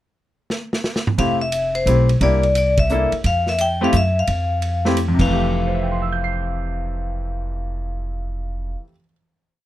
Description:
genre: jazz, small-group swing and bop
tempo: 175 BPM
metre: 3/4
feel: swing 65% on 8ths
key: F major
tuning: A4 = 437 Hz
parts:
  - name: vintage drum kit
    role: drums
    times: 0.5-5.2 s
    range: crash cymbal, hi-hat, kick drum, ride cymbal, snare drum, toms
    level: -25 LUFS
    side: right 1 dB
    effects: none
  - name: vibraphone with medium hard mallets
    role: melody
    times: 1.2-8.8 s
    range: C5 to G5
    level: -22 LUFS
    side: left 2 dB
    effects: none
  - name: clear grand piano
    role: accompaniment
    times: 1.2-9.1 s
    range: F2 to C7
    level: -22 LUFS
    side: equal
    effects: none
  - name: upright bass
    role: bass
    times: 1.2-8.7 s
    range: F1 to Gb2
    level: -21 LUFS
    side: equal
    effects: none
room: little or no reverb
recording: close, detailed microphones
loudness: -18 LUFS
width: side -14 dB against mid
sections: 0.2-1.2 pickup bar; 1.2-5.3 A section; 5.3-7.4 final chord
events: drum fill 0.5-1.2; band accent 2.7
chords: 0.2 N.C.; 1.2 Fmaj9; 2.2 C9; 3.2 Fmaj7(no3); 5.3 Fmaj9

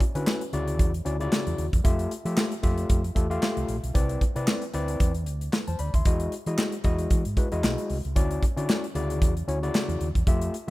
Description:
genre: early-eighties boogie funk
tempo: 114 BPM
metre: 4/4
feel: swing 56% on 16ths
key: D major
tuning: A4 = 436 Hz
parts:
  - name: modern studio drum kit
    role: drums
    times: 0.0-10.7 s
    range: handclaps, hi-hat, kick drum, snare drum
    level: -25 LUFS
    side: equal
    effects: none
  - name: overdriven tine electric piano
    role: accompaniment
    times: 0.1-10.7 s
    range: C#3 to C6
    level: -30 LUFS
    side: left 2 dB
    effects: none
  - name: fretless electric bass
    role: bass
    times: 0.1-10.7 s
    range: Bb1 to F3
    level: -29 LUFS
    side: equal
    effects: none
room: little or no reverb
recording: rough home demo mix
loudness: -23 LUFS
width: side -18 dB against mid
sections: 0.0-10.7 A section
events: none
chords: 0.0 Dmaj9; 1.8 Fmaj9; 4.0 Cmaj9; 6.1 Emaj9; 8.2 Dmaj9

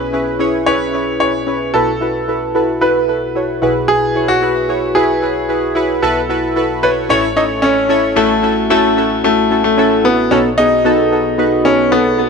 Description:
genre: pop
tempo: 112 BPM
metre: 4/4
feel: straight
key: B mixolydian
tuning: A4 = 440 Hz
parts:
  - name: bright grand piano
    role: melody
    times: 0.0-12.3 s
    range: A3 to C#5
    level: -15 LUFS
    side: left 1 dB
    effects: digital delay
  - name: warm analog keys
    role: accompaniment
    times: 0.0-12.3 s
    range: A1 to C#5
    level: -15 LUFS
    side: equal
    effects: chorus
room: moderate plate reverb, RT60 3.3 s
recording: none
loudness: -12 LUFS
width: side -5 dB against mid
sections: 0.0-8.2 A section; 8.2-12.3 B section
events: none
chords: 0.0 C#m7/B; 1.7 B7sus4; 3.6 Eadd9/B; 6.0 B7sus4; 7.1 A; 8.2 A6; 10.3 B7

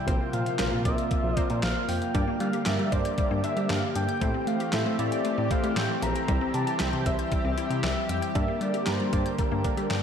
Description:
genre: synth-pop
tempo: 116 BPM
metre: 4/4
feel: straight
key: G dorian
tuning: A4 = 440 Hz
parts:
  - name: octave-doubled lead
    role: melody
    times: 0.0-10.0 s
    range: Bb4 to Bb5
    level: -32 LUFS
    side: equal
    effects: chorus, diffuse ambient delay, shimmer reverb
  - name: chorused pulse-width pad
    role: sustained chords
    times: 0.0-10.0 s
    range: C3 to G4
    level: -32 LUFS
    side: left 2 dB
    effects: shimmer reverb
  - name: warm analog keys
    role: accompaniment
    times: 0.1-10.0 s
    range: Bb3 to E5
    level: -33 LUFS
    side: right 2 dB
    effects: chorus, shimmer reverb
  - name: bell-like tine electric piano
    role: bass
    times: 0.1-10.0 s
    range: Bb1 to A3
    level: -30 LUFS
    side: equal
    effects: medium stereo tremolo
  - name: detuned 8-bit digital drum machine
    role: drums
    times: 0.1-10.0 s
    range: handclaps, hi-hat, kick drum, snare drum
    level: -30 LUFS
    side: equal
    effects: none
  - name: resonant blip pluck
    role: arpeggios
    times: 2.1-10.0 s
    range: G3 to G6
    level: -36 LUFS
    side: left 6 dB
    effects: chorus, diffuse ambient delay, shimmer reverb
room: wet lush hall reverb, RT60 2.2 s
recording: dreamy mix soaked in reverb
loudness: -24 LUFS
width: side -8 dB against mid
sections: 0.0-10.0 A section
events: none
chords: 0.1 Bbsus2; 2.1 Gm; 4.2 Am7; 6.3 C; 8.4 Gm

